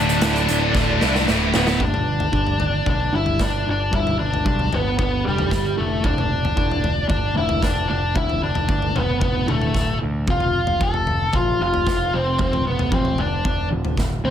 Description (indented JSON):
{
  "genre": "quiet-loud alternative rock",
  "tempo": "113 BPM",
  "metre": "4/4",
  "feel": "straight",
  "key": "unclear",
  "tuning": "A4 = 440 Hz",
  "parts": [
    { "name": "octave-fuzz lead guitar", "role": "melody", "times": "0.0-14.3 s", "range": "G3 to D5", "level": "-22 LUFS", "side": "left 1 dB", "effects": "distortion, digital delay" },
    { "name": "scooped high-gain guitar", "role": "riff", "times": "0.0-1.8 s", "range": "D2 to E4", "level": "-24 LUFS", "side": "left 1 dB", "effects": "distortion" },
    { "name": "thick fuzz guitar", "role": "riff", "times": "0.0-1.8 s", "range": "D2 to E4", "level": "-22 LUFS", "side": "equal", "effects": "distortion" },
    { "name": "growling picked electric bass", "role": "bass", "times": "0.0-14.3 s", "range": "D1 to D2", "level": "-25 LUFS", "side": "equal", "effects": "overdrive" },
    { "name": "big rock drum kit", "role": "drums", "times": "0.1-14.1 s", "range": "hi-hat, kick drum, snare drum, toms", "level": "-24 LUFS", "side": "equal", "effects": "none" },
    { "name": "clean electric guitar", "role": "arpeggios", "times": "1.8-14.3 s", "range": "D2 to G3", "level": "-28 LUFS", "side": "right 1 dB", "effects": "phaser" }
  ],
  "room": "moderate studio reverb, RT60 0.9 s",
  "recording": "none",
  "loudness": "-18 LUFS",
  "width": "side -10 dB against mid",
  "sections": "0.0-1.8 A section; 1.8-14.3 B section",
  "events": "drum fill 0.8-1.8",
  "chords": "0.0 Dsus2; 1.8 G5; 5.8 Dm/F; 10.3 F5"
}